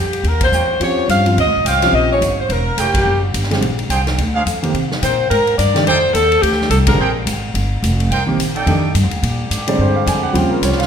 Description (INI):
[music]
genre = jazz, big band swing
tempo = 214 BPM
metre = 4/4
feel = swing 59% on 8ths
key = Bb mixolydian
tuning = A4 = 443 Hz
[part]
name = warm saxophone section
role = melody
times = 0.0-7.1 s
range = G4 to F5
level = -16 LUFS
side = left 1 dB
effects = none
[part]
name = upright bass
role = bass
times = 0.0-10.9 s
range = E1 to C3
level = -18 LUFS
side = equal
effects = none
[part]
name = swinging big-band drum kit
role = drums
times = 0.1-10.9 s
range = hi-hat, kick drum, ride cymbal, snare drum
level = -23 LUFS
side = left 1 dB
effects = none
[part]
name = warm trumpet section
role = stabs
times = 0.5-8.9 s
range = D4 to G5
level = -23 LUFS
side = right 3 dB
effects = none
[part]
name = warm baby grand piano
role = accompaniment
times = 0.8-10.9 s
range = Db3 to Ab5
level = -20 LUFS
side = right 1 dB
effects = none
[part]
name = muted trombone section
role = sustained chords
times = 9.2-10.9 s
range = Db3 to G4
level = -25 LUFS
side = right 1 dB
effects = none
[sound]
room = moderate scoring stage reverb, RT60 1.8 s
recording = minimal, uncompressed stereo recording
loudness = -13 LUFS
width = side -8 dB against mid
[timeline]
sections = 0.0-9.2 A section; 9.2-10.9 B section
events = band accent 0.4, 2.9, 6.8; grand piano solo 9.2-10.9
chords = 0.2 Eb13; 2.5 Edim7; 3.6 Bb13; 4.7 Cm7; 5.9 F13; 7.0 Bb7(no3); 8.1 Cm7; 8.7 F13; 9.2 Bb13; 10.4 Eb13